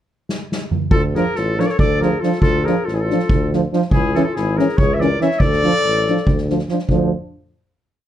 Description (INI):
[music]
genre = balkan folk, Balkan brass band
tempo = 282 BPM (eighths)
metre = 7/8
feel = straight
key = D hungarian minor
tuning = A4 = 440 Hz
[part]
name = soft-mallet drum kit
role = percussion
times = 0.3-7.1 s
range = kick drum, snare drum, toms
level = -19 LUFS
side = equal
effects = none
[part]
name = clear trumpet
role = melody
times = 0.9-6.5 s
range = G#4 to E5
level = -22 LUFS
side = left 1 dB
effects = none
[part]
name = warm clarinet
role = second line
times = 0.9-6.5 s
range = E4 to C#5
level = -23 LUFS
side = left 4 dB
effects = none
[part]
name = warm tuba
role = bass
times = 0.9-7.1 s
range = G#1 to D2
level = -22 LUFS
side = equal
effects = none
[part]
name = warm euphonium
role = accompaniment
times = 1.2-7.1 s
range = C#4 to D4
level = -23 LUFS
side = left 7 dB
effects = none
[part]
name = warm trombone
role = accompaniment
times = 1.2-7.1 s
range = E3 to F3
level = -21 LUFS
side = right 6 dB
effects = none
[sound]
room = light reverb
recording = dark, warm production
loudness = -15 LUFS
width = side -11 dB against mid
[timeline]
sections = 0.0-0.9 pickup bar; 0.9-6.9 A section; 6.9-8.1 final chord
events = drum fill 0.3-0.9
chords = 0.0 N.C.; 0.9 Dm; 3.9 C#m; 5.4 Dm